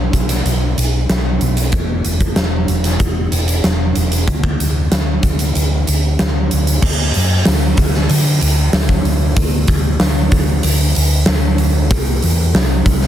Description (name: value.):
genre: rock, shoegaze and dream pop.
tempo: 94 BPM.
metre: 4/4.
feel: straight.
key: unclear.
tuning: A4 = 440 Hz.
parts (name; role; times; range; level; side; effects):
hollow-body short-scale fingered electric bass; bass; 0.0-13.1 s; E1 to D3; -16 LUFS; equal; none.
big rock drum kit; drums; 0.1-13.1 s; crash cymbal, hi-hat, kick drum, snare drum; -16 LUFS; equal; none.
room: light reverb.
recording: dense, heavily limited modern master.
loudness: -13 LUFS.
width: side -11 dB against mid.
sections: 0.0-6.8 A section; 6.8-13.1 B section.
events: none.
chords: none.